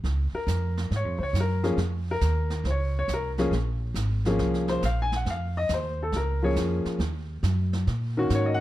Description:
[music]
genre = jazz piano trio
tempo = 138 BPM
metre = 4/4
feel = swing 67% on 8ths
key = Bb minor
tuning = A4 = 439 Hz
[part]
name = upright bass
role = bass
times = 0.0-8.6 s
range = Ab1 to Bb2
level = -26 LUFS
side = right 1 dB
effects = none
[part]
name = jazz brush drum kit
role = drums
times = 0.0-8.6 s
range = brushed snare drum, hi-hat, snare drum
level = -38 LUFS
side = right 4 dB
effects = none
[part]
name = warm baby grand piano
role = melody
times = 0.3-8.6 s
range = Eb3 to Ab5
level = -27 LUFS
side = left 2 dB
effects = none
[sound]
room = little or no reverb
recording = dark, warm production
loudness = -24 LUFS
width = side -15 dB against mid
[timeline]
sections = 0.0-8.6 A section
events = grand piano solo 0.0-8.6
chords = 0.0 Bbm7; 7.0 Ebm7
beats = | 0.04 0.47 0.91 1.34 | 1.78 2.21 2.65 3.08 | 3.52 3.96 4.39 4.83 | 5.26 5.70 6.13 6.57 | 7.00 7.44 7.87 8.31

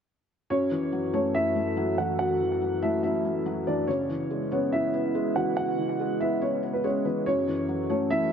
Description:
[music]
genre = hip hop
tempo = 142 BPM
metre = 4/4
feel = half-time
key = F# minor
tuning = A4 = 438 Hz
[part]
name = dark concert grand piano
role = melody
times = 0.5-8.3 s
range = B3 to F#5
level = -27 LUFS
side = right 1 dB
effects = low-pass filter, dub echo
[part]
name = felt-muted upright piano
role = accompaniment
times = 0.5-8.3 s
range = F#2 to C#4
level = -28 LUFS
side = left 4 dB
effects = low-pass filter, dub echo
[part]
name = warbly tape-like pad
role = sustained chords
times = 0.5-8.3 s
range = F#2 to A4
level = -34 LUFS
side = right 5 dB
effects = chorus, built-in reverb
[sound]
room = moderate echo chamber reverb, RT60 2.2 s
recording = echo-heavy mix, nothing above 8.0 kHz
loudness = -24 LUFS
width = side -7 dB against mid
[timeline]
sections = 0.5-8.3 A section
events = none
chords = 0.5 F#m7; 3.9 C#m7; 7.3 F#m7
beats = | 0.50 0.92 1.35 1.77 | 2.19 2.61 3.04 3.46 | 3.88 4.30 4.73 5.15 | 5.57 5.99 6.42 6.84 | 7.26 7.68 8.11

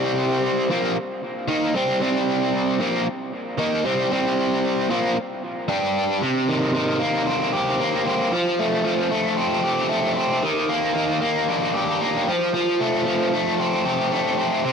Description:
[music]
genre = rock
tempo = 114 BPM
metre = 4/4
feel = straight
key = C dorian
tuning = A4 = 438 Hz
[part]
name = biting overdriven guitar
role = solo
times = 0.0-14.7 s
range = Bb2 to G4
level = -20 LUFS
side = equal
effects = harmonic tremolo, analog delay
[sound]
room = moderate plate reverb, RT60 3.1 s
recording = none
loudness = -20 LUFS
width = side -6 dB against mid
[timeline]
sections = 0.0-6.2 A section; 6.2-14.7 B section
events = none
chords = 0.0 Cm; 5.7 G5; 6.2 Cm7; 8.3 Fadd9; 10.4 Ebmaj7; 12.3 Fadd9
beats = 0.43 0.95 1.48 | 2.01 2.53 3.06 3.59 | 4.11 4.64 5.17 5.69 | 6.22 6.74 7.27 7.80 | 8.32 8.85 9.38 9.90 | 10.43 10.96 11.48 12.01 | 12.53 13.06 13.59 14.11 | 14.64

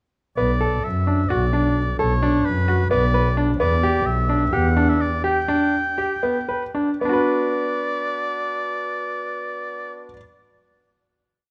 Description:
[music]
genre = contemporary instrumental, chamber music in an uneven meter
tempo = 228-263 BPM (eighths)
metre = 7/8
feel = straight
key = B minor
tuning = A4 = 436 Hz
[part]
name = clear oboe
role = melody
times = 0.4-10.0 s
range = B4 to G5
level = -28 LUFS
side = equal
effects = none
[part]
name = bright grand piano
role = arpeggios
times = 0.4-10.2 s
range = B3 to B4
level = -25 LUFS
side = equal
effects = none
[part]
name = warm double bass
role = bass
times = 0.4-5.1 s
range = B1 to F#2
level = -24 LUFS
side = equal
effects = none
[sound]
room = light reverb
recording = none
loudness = -21 LUFS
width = mono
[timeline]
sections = 0.4-7.0 A section; 7.0-10.7 final chord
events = slowing down 3.6-7.0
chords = 0.4 Bm; 3.6 Em7; 7.0 Bm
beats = | 0.38 0.61 0.84 1.07 1.30 1.53 1.76 | 1.99 2.22 2.45 2.68 2.91 3.14 3.37 | 3.60 3.83 4.06 4.29 4.53 4.76 5.00 | 5.24 5.49 5.73 5.98 6.23 6.49 6.75 | 7.01 7.27 7.53 7.79 8.05 8.31 8.57 | 8.82 9.08 9.34 9.60 9.87 10.13

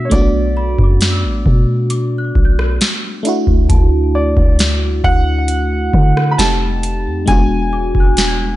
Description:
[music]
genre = contemporary R&B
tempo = 67 BPM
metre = 4/4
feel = straight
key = unclear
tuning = A4 = 435 Hz
[part]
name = warm grand piano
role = melody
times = 0.0-8.6 s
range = C#5 to B5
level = -21 LUFS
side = equal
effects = ping-pong delay
[part]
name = FM electric piano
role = accompaniment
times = 0.0-8.6 s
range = G#3 to G4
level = -19 LUFS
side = equal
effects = chorus, phaser
[part]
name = soft 808-style bass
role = bass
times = 0.0-8.6 s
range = E1 to D3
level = -16 LUFS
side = equal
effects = none
[part]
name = worn celesta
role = texture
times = 0.0-8.6 s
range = F#5 to G#6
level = -31 LUFS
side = left 1 dB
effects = ping-pong delay
[part]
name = booming analog drum machine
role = drums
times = 0.1-8.4 s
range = hi-hat, kick drum, rim click, snare drum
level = -14 LUFS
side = equal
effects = overdrive
[sound]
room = digital ambience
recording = nothing above 10.9 kHz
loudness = -12 LUFS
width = side -15 dB against mid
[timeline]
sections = 0.0-8.6 A section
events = none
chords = 0.1 Gmaj9; 3.2 Dadd9; 6.4 F9; 7.3 E9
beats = | 0.12 1.01 1.91 2.80 | 3.70 4.59 5.49 6.38 | 7.28 8.18

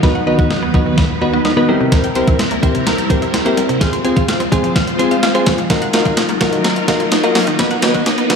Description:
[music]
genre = dance-pop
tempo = 127 BPM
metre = 4/4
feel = straight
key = unclear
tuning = A4 = 435 Hz
[part]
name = soft electric-piano-like synth keys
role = accompaniment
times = 0.0-8.4 s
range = D#3 to C5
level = -18 LUFS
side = left 2 dB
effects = chorus, tremolo, sidechain pumping, slapback echo
[part]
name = phased string machine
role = sustained chords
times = 0.0-8.4 s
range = D#2 to C5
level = -20 LUFS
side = equal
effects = ensemble chorus, phaser, sidechain pumping
[part]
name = mallet-like synth pluck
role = arpeggios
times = 0.0-8.4 s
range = C3 to F6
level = -21 LUFS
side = left 2 dB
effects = chorus, sidechain pumping, ping-pong delay, slapback echo
[part]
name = direct-recorded clean electric guitar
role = riff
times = 0.0-8.4 s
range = D#4 to F5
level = -24 LUFS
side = right 6 dB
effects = lush chorus, slapback echo
[part]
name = crisp 8-bit digital drum machine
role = drums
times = 0.0-8.4 s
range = hi-hat, kick drum, snare drum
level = -16 LUFS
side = equal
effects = overdrive
[part]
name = riser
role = sound effects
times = 2.2-8.4 s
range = none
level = -27 LUFS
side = right 1 dB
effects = none
[sound]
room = moderate lush hall reverb, RT60 1.9 s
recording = live gig heard through the venue's PA, club reverb, high-pass filter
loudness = -12 LUFS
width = side -6 dB against mid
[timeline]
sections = 0.0-8.4 A section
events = build-up 0.0-8.4; drum fill 0.0-8.4; filter sweep 0.0-8.4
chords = 0.0 B/D#; 1.7 C7; 3.8 Fm; 5.7 Ebmadd9; 7.6 B/D#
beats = | 0.03 0.51 0.98 1.45 | 1.92 2.40 2.87 3.34 | 3.81 4.29 4.76 5.23 | 5.70 6.17 6.65 7.12 | 7.59 8.06

